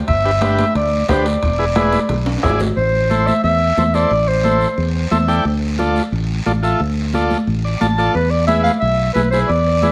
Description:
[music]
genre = latin, cumbia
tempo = 178 BPM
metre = 4/4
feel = straight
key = A minor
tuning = A4 = 440 Hz
[part]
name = warm clarinet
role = melody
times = 0.1-5.0, 8.1-9.9 s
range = B4 to F5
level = -20 LUFS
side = equal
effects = plate reverb, tape echo
[part]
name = fingered electric bass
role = bass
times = 0.1-9.9 s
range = E1 to E2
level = -21 LUFS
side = equal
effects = none
[part]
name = bombo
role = percussion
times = 0.1-2.6 s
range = none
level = -25 LUFS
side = equal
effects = none
[part]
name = guiro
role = percussion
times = 0.1-9.9 s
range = none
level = -36 LUFS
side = equal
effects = none
[part]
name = timbales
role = percussion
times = 0.1-2.7 s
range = none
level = -29 LUFS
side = equal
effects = none
[part]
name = combo organ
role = accompaniment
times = 0.2-9.9 s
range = D4 to A5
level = -23 LUFS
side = equal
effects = none
[part]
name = congas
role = percussion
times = 0.4-9.9 s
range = none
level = -25 LUFS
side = equal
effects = none
[sound]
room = moderate studio reverb, RT60 0.9 s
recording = none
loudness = -17 LUFS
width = mono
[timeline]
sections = 0.0-2.8 A section; 2.8-9.9 B section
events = drum fill 1.8-2.8; transistor combo organ fill 5.0-5.5, 7.5-8.1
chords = 0.1 G; 1.4 E7; 2.8 Am; 5.5 Dm; 8.1 E7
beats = | 0.08 0.42 0.75 1.09 | 1.42 1.76 2.10 2.43 | 2.77 3.10 3.44 3.77 | 4.11 4.45 4.78 5.12 | 5.46 5.79 6.13 6.46 | 6.80 7.14 7.47 7.81 | 8.15 8.48 8.82 9.15 | 9.49 9.83

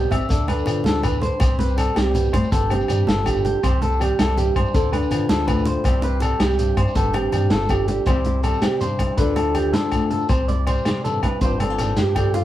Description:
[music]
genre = highlife guitar band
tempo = 108 BPM (dotted quarters)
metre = 12/8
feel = straight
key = C major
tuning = A4 = 439 Hz
[part]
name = flamenco guitar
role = accompaniment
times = 0.0-12.4 s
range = G2 to A4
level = -25 LUFS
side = left 4 dB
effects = none
[part]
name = electric guitar at the edge of break-up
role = arpeggios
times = 0.0-12.4 s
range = F4 to E5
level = -24 LUFS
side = right 2 dB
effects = none
[part]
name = fingered electric bass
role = bass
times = 0.0-12.4 s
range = G1 to D3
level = -24 LUFS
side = equal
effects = none
[part]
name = shekere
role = percussion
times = 0.0-12.2 s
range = none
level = -30 LUFS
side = equal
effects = none
[part]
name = vintage drum kit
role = drums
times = 0.1-12.4 s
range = hi-hat, kick drum, snare drum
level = -23 LUFS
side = equal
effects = none
[part]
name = agogo bells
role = percussion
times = 0.1-12.3 s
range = none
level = -32 LUFS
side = left 2 dB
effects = none
[part]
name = congas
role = percussion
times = 0.1-12.4 s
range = none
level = -29 LUFS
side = right 2 dB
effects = none
[sound]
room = light reverb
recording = band playing live in one room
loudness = -18 LUFS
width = side -13 dB against mid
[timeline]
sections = 0.0-8.1 A section; 8.1-12.4 B section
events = none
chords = 0.3 Dmadd9; 1.4 C5; 2.5 G7sus4; 3.6 C; 4.7 Dmadd9; 5.8 C; 7.0 G7sus4; 8.1 C; 9.2 Dmadd9; 10.3 C; 11.4 G7sus4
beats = 0.30 0.86 | 1.41 1.97 2.52 3.08 | 3.63 4.18 4.74 5.29 | 5.85 6.40 6.96 7.51 | 8.07 8.63 9.18 9.74 | 10.29 10.85 11.41 11.96

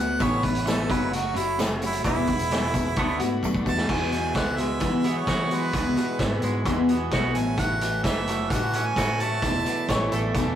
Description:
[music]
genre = folk rock and heartland rock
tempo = 130 BPM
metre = 4/4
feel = straight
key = unclear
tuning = A4 = 441 Hz
[part]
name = clear harmonica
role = melody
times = 0.0-9.9 s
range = E4 to A5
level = -28 LUFS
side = right 2 dB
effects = none
[part]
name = picked steel-string acoustic guitar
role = accompaniment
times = 0.0-10.6 s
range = E2 to F#4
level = -28 LUFS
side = left 3 dB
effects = none
[part]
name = bright tonewheel organ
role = sustained chords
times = 0.0-10.6 s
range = G#4 to D6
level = -39 LUFS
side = right 1 dB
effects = none
[part]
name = twangy electric guitar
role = riff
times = 0.0-10.6 s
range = E2 to F#4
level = -30 LUFS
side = right 4 dB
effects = none
[part]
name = fingered electric bass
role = bass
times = 0.0-10.6 s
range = E1 to E3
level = -30 LUFS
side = equal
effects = none
[part]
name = vintage drum kit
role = drums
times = 0.2-10.5 s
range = crash cymbal, hi-hat, kick drum, snare drum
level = -28 LUFS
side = equal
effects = none
[part]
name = tambourine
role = percussion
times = 0.2-3.8, 7.8-10.5 s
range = none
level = -46 LUFS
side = left 4 dB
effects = none
[part]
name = mandolin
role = second line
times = 9.9-10.6 s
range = A4 to C#5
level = -28 LUFS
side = equal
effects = none
[sound]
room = moderate studio ambience, RT60 0.5 s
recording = rough rehearsal-room recording, warm saturation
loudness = -22 LUFS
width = side -10 dB against mid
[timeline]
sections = 0.0-3.9 A section; 3.9-10.6 B section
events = harmonica solo 0.0-3.9; drum fill 3.4-3.9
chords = 0.2 Aadd9; 0.9 F#m; 2.0 Eadd9; 3.0 D6; 3.9 Eadd9; 7.4 A6; 9.4 E7sus4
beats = | 0.21 0.67 1.13 1.59 | 2.05 2.51 2.97 3.43 | 3.89 4.36 4.82 5.28 | 5.74 6.20 6.66 7.12 | 7.59 8.05 8.51 8.97 | 9.43 9.89 10.36

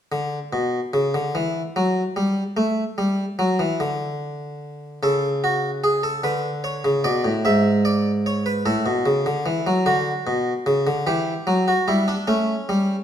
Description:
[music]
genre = classical, baroque-style two-part invention for harpsichord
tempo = 49 BPM (dotted quarters)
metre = 6/8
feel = straight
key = unclear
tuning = A4 = 440 Hz
[part]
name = harpsichord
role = solo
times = 0.1-13.0 s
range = G#2 to E5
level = -20 LUFS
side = equal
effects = none
[sound]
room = moderate recital hall reverb, RT60 1.2 s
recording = dark, warm production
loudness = -19 LUFS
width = side -9 dB against mid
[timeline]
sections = 0.1-13.0 A section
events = none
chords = 0.1 N.C.; 5.0 A/C#; 6.2 Bm7/D; 7.4 E7/G#; 8.7 A; 9.9 D; 11.1 Em7; 12.3 A7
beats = | 0.12 1.35 | 2.58 3.80 | 5.02 6.24 | 7.45 8.65 | 9.86 11.07 | 12.29

